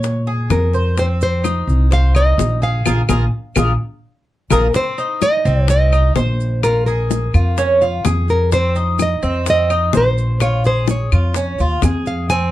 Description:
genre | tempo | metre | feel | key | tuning
latin, Cuban son and guajira | 127 BPM | 4/4 | straight | unclear | A4 = 440 Hz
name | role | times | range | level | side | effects
nylon-string guitar | melody | 0.0-12.5 s | Bb4 to Ab5 | -19 LUFS | equal | none
Cuban tres | arpeggios | 0.0-12.5 s | C4 to Db5 | -22 LUFS | right 1 dB | none
upright bass | bass | 0.0-12.5 s | Bb1 to Bb2 | -16 LUFS | equal | none
bongos | percussion | 0.0-12.5 s | none | -22 LUFS | left 5 dB | none
maracas | percussion | 0.0-12.5 s | none | -34 LUFS | right 8 dB | none
claves | percussion | 0.5-12.1 s | none | -28 LUFS | left 4 dB | none
room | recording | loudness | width
moderate small room ambience, RT60 0.5 s | dark, warm production, lossy compression artefacts | -14 LUFS | side -14 dB against mid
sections
0.0-4.7 A section; 4.7-12.5 B section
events
band accent 2.9-4.7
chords
0.0 Bbm7; 1.0 Fm7; 2.9 Bb5; 4.7 Bbsus24; 6.6 Bbm7; 8.5 F5; 10.4 Bbm7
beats
0.03 0.50 | 0.97 1.44 1.91 2.39 | 2.86 3.33 3.80 4.27 | 4.74 5.22 5.69 6.16 | 6.63 7.11 7.58 8.05 | 8.52 8.99 9.47 9.94 | 10.41 10.88 11.36 11.83 | 12.30

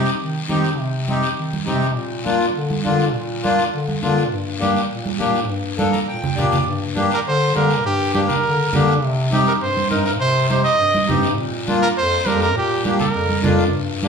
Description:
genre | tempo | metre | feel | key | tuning
latin, cumbia | 204 BPM | 4/4 | straight | G minor | A4 = 440 Hz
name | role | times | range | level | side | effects
accordion | accompaniment | 0.0-14.1 s | Bb3 to Bb5 | -22 LUFS | left 2 dB | none
mellow bass clarinet | bass | 0.0-14.1 s | F2 to Eb3 | -22 LUFS | left 1 dB | none
guiro | percussion | 0.1-14.1 s | none | -30 LUFS | left 5 dB | none
congas | percussion | 0.5-14.1 s | none | -24 LUFS | right 5 dB | none
clear trumpet | melody | 7.1-13.5 s | G4 to Eb5 | -19 LUFS | right 2 dB | none
room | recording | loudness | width
wet large studio reverb, RT60 1.3 s | band playing live in one room | -16 LUFS | side -6 dB against mid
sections
0.0-6.7 A section; 6.7-14.1 B section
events
drum fill 5.8-6.7; accordion fill 5.8-6.7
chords
0.0 Cm; 2.0 Bb; 4.3 Gm; 9.0 Cm; 11.4 Bb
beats
0.20 0.49 | 0.79 1.08 1.38 1.67 | 1.96 2.26 2.55 2.85 | 3.14 3.44 3.73 4.03 | 4.32 4.62 4.91 5.20 | 5.50 5.79 6.09 6.38 | 6.67 6.97 7.26 7.56 | 7.85 8.14 8.44 8.73 | 9.03 9.32 9.62 9.91 | 10.20 10.50 10.79 11.08 | 11.38 11.67 11.97 12.26 | 12.55 12.85 13.14 13.44 | 13.73 14.02

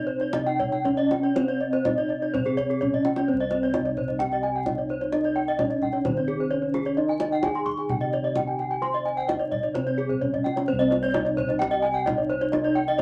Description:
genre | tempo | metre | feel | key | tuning
Balinese gamelan | 130 BPM | 4/4 | straight | C pelog | A4 = 440 Hz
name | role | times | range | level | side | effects
gamelan-type bronze metallophone | melody | 0.0-13.0 s | C4 to C5 | -31 LUFS | equal | none
gamelan-type bronze metallophone | arpeggios | 0.0-13.0 s | Ab4-20c to Db6+20c | -31 LUFS | equal | none
gamelan-type bossed gongs | bass | 0.0-13.0 s | C2 to C5 | -33 LUFS | equal | none
gamelan-type bronze metallophone | arpeggios | 0.1-13.0 s | Ab4-20c to C6 | -30 LUFS | equal | none
kendang | percussion | 0.2-13.0 s | none | -35 LUFS | equal | none
room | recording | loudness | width
moderate club reverb, RT60 0.5 s | vinyl crackle | -25 LUFS | mono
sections
0.0-3.3 A section; 3.3-13.0 B section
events
drum fill 2.9-3.3, 10.1-10.7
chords
none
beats
0.33 0.85 | 1.36 1.85 2.34 2.81 | 3.28 3.74 4.20 4.67 | 5.13 5.59 6.05 6.51 | 6.98 7.44 7.90 8.36 | 8.83 9.29 9.75 10.21 | 10.68 11.14 11.60 12.06 | 12.52 12.99

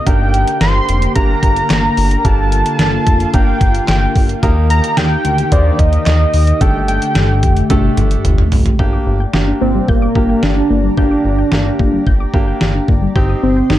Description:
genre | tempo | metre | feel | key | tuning
synth-pop | 110 BPM | 4/4 | straight | G minor | A4 = 435 Hz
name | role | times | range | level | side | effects
wide unison lead | melody | 0.0-13.8 s | Bb3 to C6 | -17 LUFS | right 1 dB | none
lush unison pad | sustained chords | 0.0-13.8 s | D3 to C6 | -22 LUFS | left 1 dB | chorus
clear baby grand piano | accompaniment | 0.1-13.8 s | A3 to C5 | -22 LUFS | right 2 dB | none
chorused synth bass | bass | 0.1-13.8 s | F1 to Eb2 | -16 LUFS | equal | none
detuned 8-bit digital drum machine | drums | 0.1-13.8 s | handclaps, hi-hat, kick drum, snare drum, toms | -15 LUFS | equal | none
soft round pluck | arpeggios | 8.8-13.8 s | G3 to G6 | -22 LUFS | left 5 dB | chorus, digital delay
room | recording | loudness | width
light reverb | dark, warm production | -11 LUFS | side -13 dB against mid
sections
0.0-8.8 A section; 8.8-13.8 B section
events
drum fill 7.7-8.8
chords
0.1 Gm; 4.4 Eb; 6.6 Gsus2; 8.8 Gm; 13.2 Cm/G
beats
| 0.07 0.61 1.16 1.70 | 2.25 2.79 3.34 3.88 | 4.43 4.97 5.52 6.07 | 6.61 7.16 7.70 8.25 | 8.79 9.34 9.88 10.43 | 10.97 11.52 12.07 12.61 | 13.16 13.70

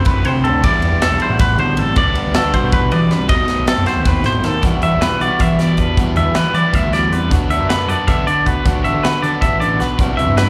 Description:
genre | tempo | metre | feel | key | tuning
math rock and midwest emo | 314 BPM (eighths) | 7/8 | straight | E minor | A4 = 442 Hz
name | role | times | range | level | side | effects
electric guitar through a small old amp | accompaniment | 0.0-10.5 s | E2 to A4 | -26 LUFS | equal | slapback echo
twangy electric guitar | arpeggios | 0.0-10.5 s | A4 to E5 | -21 LUFS | equal | slapback echo
overdriven electric guitar | riff | 0.0-10.5 s | B2 to F#4 | -25 LUFS | equal | slapback echo
growling picked electric bass | bass | 0.0-10.5 s | A1 to E3 | -21 LUFS | equal | overdrive
modern studio drum kit | drums | 0.0-10.5 s | hi-hat, kick drum, ride cymbal, snare drum | -21 LUFS | equal | none
room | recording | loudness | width
small room reverb | live gig heard through the venue's PA, club reverb | -16 LUFS | mono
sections
0.0-4.6 A section; 4.6-10.5 B section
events
none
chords
0.0 D9; 0.6 Em9; 2.0 Gmaj9/D; 3.3 B7b9; 4.6 Em9; 7.3 Bm7/D; 10.0 Cmaj9#11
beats
0.07 0.26 0.45 | 0.64 0.83 1.02 1.21 1.40 1.59 1.78 | 1.97 2.16 2.35 2.54 2.73 2.92 3.11 | 3.30 3.49 3.68 3.87 4.06 4.25 4.44 | 4.63 4.82 5.01 5.21 5.40 5.59 5.78 | 5.97 6.16 6.35 6.54 6.74 6.93 7.12 | 7.31 7.50 7.69 7.88 8.07 8.27 8.46 | 8.65 8.84 9.03 9.22 9.41 9.61 9.80 | 9.99 10.18 10.37

